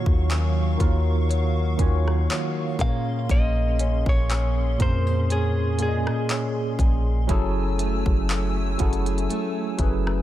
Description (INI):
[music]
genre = contemporary R&B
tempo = 60 BPM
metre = 4/4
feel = swing 54% on 16ths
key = unclear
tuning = A4 = 440 Hz
[part]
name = tine electric piano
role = accompaniment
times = 0.0-10.2 s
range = Bb2 to Eb5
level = -27 LUFS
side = right 1 dB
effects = medium stereo tremolo
[part]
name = hollow soft pad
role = sustained chords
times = 0.0-10.2 s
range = Gb3 to Fb6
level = -34 LUFS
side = right 2 dB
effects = ensemble chorus, sidechain pumping
[part]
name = flamenco guitar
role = arpeggios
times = 0.0-10.2 s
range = Eb3 to C5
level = -34 LUFS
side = left 7 dB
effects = digital delay
[part]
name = soft 808-style bass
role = bass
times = 0.0-10.2 s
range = Gb1 to Bb2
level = -23 LUFS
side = equal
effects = none
[part]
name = trap drum kit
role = drums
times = 0.1-10.2 s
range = handclaps, hi-hat, kick drum, rim click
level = -25 LUFS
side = equal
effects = none
[part]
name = direct-recorded clean electric guitar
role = melody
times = 2.8-6.8 s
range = Ab4 to F5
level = -29 LUFS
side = right 1 dB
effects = digital delay
[sound]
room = little or no reverb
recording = none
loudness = -20 LUFS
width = side -13 dB against mid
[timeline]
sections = 0.0-10.2 A section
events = none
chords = 0.0 Ebm9; 2.8 Bbm9; 7.3 Gbm9